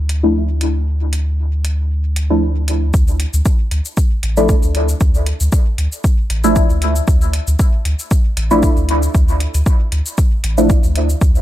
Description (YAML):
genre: dub techno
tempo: 116 BPM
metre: 4/4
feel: swing 54% on 16ths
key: D minor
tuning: A4 = 440 Hz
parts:
  - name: soft dub sub bass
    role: bass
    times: 0.0-11.4 s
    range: A1 to D2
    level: -17 LUFS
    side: equal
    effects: sidechain pumping
  - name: electronic hi-hat and shaker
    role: drums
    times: 0.1-11.4 s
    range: none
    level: -27 LUFS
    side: left 1 dB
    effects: overdrive
  - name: deep mellow chord stab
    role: stabs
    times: 0.2-10.7 s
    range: F3 to E4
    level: -18 LUFS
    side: equal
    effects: chorus, phaser, sidechain pumping, dub echo
  - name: electronic kick drum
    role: drums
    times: 2.9-11.3 s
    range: none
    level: -14 LUFS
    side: equal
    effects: overdrive
room: digital ambience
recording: none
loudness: -13 LUFS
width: side -13 dB against mid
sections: 0.0-2.9 A section; 2.9-11.4 B section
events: filter sweep on synth stab 0.0-2.9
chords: 0.0 Dmadd9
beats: 0.35 | 0.87 1.39 1.90 2.42 | 2.94 3.46 3.97 4.49 | 5.01 5.53 6.04 6.56 | 7.08 7.59 8.11 8.63 | 9.15 9.66 10.18 10.70 | 11.21